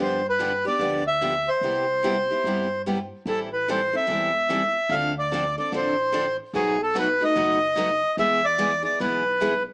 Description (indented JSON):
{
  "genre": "acoustic string swing (jazz manouche)",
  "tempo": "146 BPM",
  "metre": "4/4",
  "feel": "swing 62% on 8ths",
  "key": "C major, A minor from 3.3 s",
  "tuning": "A4 = 441 Hz",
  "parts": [
    { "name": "accordion", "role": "melody", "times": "0.0-9.6 s", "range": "G#4 to F5", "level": "-22 LUFS", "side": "equal", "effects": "plate reverb" },
    { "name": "picked steel-string acoustic guitar", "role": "accompaniment", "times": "0.0-9.5 s", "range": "B2 to A4", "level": "-30 LUFS", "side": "left 1 dB", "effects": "none" },
    { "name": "picked steel-string acoustic guitar", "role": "accompaniment", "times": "0.0-9.5 s", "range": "B2 to B4", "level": "-30 LUFS", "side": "right 1 dB", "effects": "none" },
    { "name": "upright bass", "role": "bass", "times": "0.0-9.7 s", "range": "E1 to G2", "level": "-37 LUFS", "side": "equal", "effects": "none" }
  ],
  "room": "moderate studio reverb, RT60 0.8 s",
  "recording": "small speaker sound",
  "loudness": "-21 LUFS",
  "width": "side -29 dB against mid",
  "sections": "0.0-3.3 A section; 3.3-9.7 B section",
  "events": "none",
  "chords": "0.0 G7; 1.6 Cmaj7; 3.3 Am7; 4.9 Dm7; 6.5 B7; 8.2 E"
}